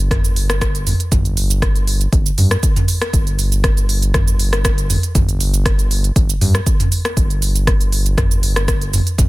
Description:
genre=afro house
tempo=119 BPM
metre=4/4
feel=straight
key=unclear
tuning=A4 = 435 Hz
part: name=round analog bass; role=bass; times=0.0-9.3 s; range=G1 to G2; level=-18 LUFS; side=equal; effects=tube saturation, sidechain pumping
part: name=deep house drum kit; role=drums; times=0.1-9.3 s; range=hi-hat, rim click, shaker, toms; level=-19 LUFS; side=right 1 dB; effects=soft clipping on snare
part: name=electronic kick drum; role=drums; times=0.1-9.3 s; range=none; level=-17 LUFS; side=equal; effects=none
room=little or no reverb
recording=dense, heavily limited modern master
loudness=-14 LUFS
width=side -19 dB against mid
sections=0.0-9.3 A section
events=none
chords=none

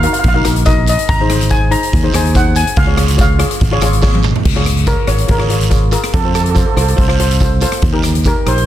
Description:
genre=calypso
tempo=142 BPM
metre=4/4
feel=straight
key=Db major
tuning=A4 = 445 Hz
part: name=steel pan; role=melody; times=0.0-8.7 s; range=A4 to Bb5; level=-19 LUFS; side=equal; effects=ping-pong delay
part: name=steel pan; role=accompaniment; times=0.0-8.6 s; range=Eb4 to Db5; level=-20 LUFS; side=left 2 dB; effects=plate reverb
part: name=modern bright fingered electric bass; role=bass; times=0.0-8.6 s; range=Ab1 to F2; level=-15 LUFS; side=equal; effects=none
part: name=street-band drum kit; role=drums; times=0.0-8.7 s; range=crash cymbal, hi-hat, kick drum, rim click, snare drum, toms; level=-15 LUFS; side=equal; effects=soft clipping on snare
part: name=guiro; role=percussion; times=0.2-8.3 s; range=none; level=-27 LUFS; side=right 10 dB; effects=none
room=light reverb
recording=dense, heavily limited modern master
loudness=-11 LUFS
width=side -12 dB against mid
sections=0.0-4.4 A section; 4.4-8.7 B section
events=drum fill 4.0-4.4; steel pan solo 4.4-8.7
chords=0.0 Ebm; 1.1 Ab; 2.8 Db; 4.4 Db6; 6.1 F; 7.8 Eb

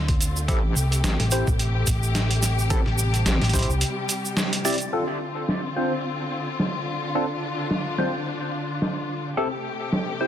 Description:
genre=glitch hop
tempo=108 BPM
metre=4/4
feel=swing 57% on 16ths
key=D minor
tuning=A4 = 440 Hz
part: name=warm studio string section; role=sustained chords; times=0.0-10.3 s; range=C3 to G4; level=-29 LUFS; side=left 2 dB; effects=vintage 12-bit sampler grit, sidechain pumping
part: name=hollow-body short-scale fingered electric bass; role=bass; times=0.0-3.8 s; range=A1 to D2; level=-23 LUFS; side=equal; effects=none
part: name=boom bap sampler-style drum kit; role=drums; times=0.1-10.3 s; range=hi-hat, snare drum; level=-27 LUFS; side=right 1 dB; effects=low-pass filter on hats, low-pass filter on snare
part: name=electronic kick drum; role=drums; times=0.1-3.7 s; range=none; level=-24 LUFS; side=equal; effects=none
part: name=egg shaker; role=percussion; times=0.2-4.9 s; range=none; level=-30 LUFS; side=right 4 dB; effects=none
part: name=barky tine electric piano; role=stabs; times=0.5-10.3 s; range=C4 to D5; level=-28 LUFS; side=left 1 dB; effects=phaser, sidechain pumping, low-pass filter, dub echo
part: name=wobble bass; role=bass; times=0.5-3.4 s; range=A1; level=-24 LUFS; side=equal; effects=chorus, tube saturation
room=light reverb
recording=dense, heavily limited modern master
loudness=-22 LUFS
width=side -10 dB against mid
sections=0.0-4.9 A section; 4.9-10.3 B section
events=break 3.8-4.9; band accent 4.4; filter sweep on tine electric piano 4.9-10.3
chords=0.5 Am7; 4.9 Dm7; 9.4 Am7

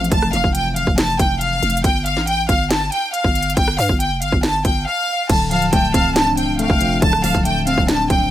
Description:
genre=hip hop, trap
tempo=139 BPM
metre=4/4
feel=half-time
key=D minor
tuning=A4 = 441 Hz
part: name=clear studio violin section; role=melody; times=0.0-8.3 s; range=F5 to A5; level=-19 LUFS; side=equal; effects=none
part: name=warbly lo-fi synth keys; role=accompaniment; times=0.0-1.9, 5.3-8.3 s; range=D3 to D4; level=-22 LUFS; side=left 3 dB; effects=chorus
part: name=growling 808-style bass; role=bass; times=0.0-8.3 s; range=C1 to G2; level=-22 LUFS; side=equal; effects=none
part: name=trap drum kit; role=drums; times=0.0-8.2 s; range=crash cymbal, hi-hat, kick drum, rim click, snare drum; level=-19 LUFS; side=equal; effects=none
part: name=silver concert flute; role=second line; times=5.5-7.4 s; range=G5 to A5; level=-26 LUFS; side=right 4 dB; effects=digital delay
room=little or no reverb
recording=none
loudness=-15 LUFS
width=side -12 dB against mid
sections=0.0-5.3 A section; 5.3-8.3 B section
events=break 4.9-5.3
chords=0.0 Fmaj7; 1.8 Fsus2; 5.3 Dm7

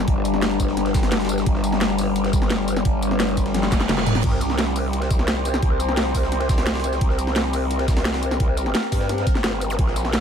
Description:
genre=dark technical drum and bass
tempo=173 BPM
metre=4/4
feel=straight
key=unclear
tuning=A4 = 442 Hz
part: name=metallic inharmonic drone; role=sustained chords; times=0.0-10.2 s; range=G3 to C5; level=-24 LUFS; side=left 3 dB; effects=chorus, built-in reverb, vintage 12-bit sampler grit, sidechain pumping
part: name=growl bass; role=bass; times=0.0-10.2 s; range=F1 to G2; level=-24 LUFS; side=equal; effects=chorus, overdrive
part: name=breakbeat sampler-style drum kit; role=drums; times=0.1-10.2 s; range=hi-hat, snare drum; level=-34 LUFS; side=equal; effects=overdrive, high-pass filter on hats, studio reverb, high-pass filter on snare, high-pass filter on room
part: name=drum and bass drum kit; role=drums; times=0.1-10.2 s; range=crash cymbal, hi-hat, snare drum, tambourine, toms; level=-25 LUFS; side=equal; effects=overdrive, studio reverb
part: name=electronic kick drum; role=drums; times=0.1-9.9 s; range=none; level=-22 LUFS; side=equal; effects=overdrive, studio reverb
part: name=reverse cymbal and zap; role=sound effects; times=3.7-4.2, 9.7-9.8 s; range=none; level=-32 LUFS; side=right 5 dB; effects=none
room=digital ambience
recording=none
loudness=-18 LUFS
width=side -8 dB against mid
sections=0.0-10.2 A section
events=drum fill 3.5-4.2; reverse cymbal 3.7-4.2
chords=0.0 G5; 4.2 C5

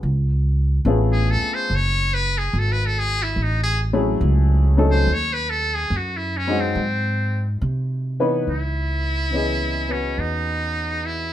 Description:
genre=jazz ballad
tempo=71 BPM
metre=4/4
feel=swing 67% on 8ths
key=C# minor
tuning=A4 = 436 Hz
part: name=warm upright piano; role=accompaniment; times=0.0-11.3 s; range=E3 to D#5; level=-23 LUFS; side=left 3 dB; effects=none
part: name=upright bass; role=bass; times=0.0-11.3 s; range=F#1 to B#2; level=-21 LUFS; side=right 1 dB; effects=none
part: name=trumpet with metal mute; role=melody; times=1.1-11.3 s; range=B#3 to C#5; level=-23 LUFS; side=equal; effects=none
room=light reverb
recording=none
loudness=-19 LUFS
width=side -12 dB against mid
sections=0.0-8.5 A section; 8.5-11.3 B section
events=muted trumpet solo 0.0-8.5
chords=0.0 C#7b13; 1.7 F#m9; 5.1 D#m6; 6.8 G#; 8.5 C#m9

